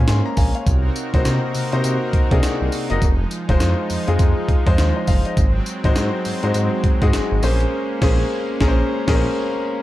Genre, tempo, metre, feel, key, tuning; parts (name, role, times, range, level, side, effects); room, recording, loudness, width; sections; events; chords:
R&B, new jack swing; 102 BPM; 4/4; swing 60% on 16ths; Bb minor; A4 = 440 Hz
clear concert grand piano; accompaniment; 0.0-9.8 s; Ab3 to C6; -22 LUFS; left 3 dB; tube saturation
brassy analog pad; sustained chords; 0.0-9.8 s; C3 to Bb4; -27 LUFS; right 2 dB; chorus
smooth synth bass; bass; 0.0-9.3 s; F1 to C3; -20 LUFS; equal
breakbeat sampler-style drum kit; drums; 0.1-9.3 s; crash cymbal, hi-hat, kick drum, snare drum, tambourine; -19 LUFS; equal
little or no reverb; dark, warm production; -16 LUFS; side -15 dB against mid
0.0-9.8 A section
band accent 7.7-9.8; break 8.9-9.8
0.0 Bbm9; 0.7 Cm7b5; 3.0 Fm7; 5.4 Ab7; 7.4 Bbm9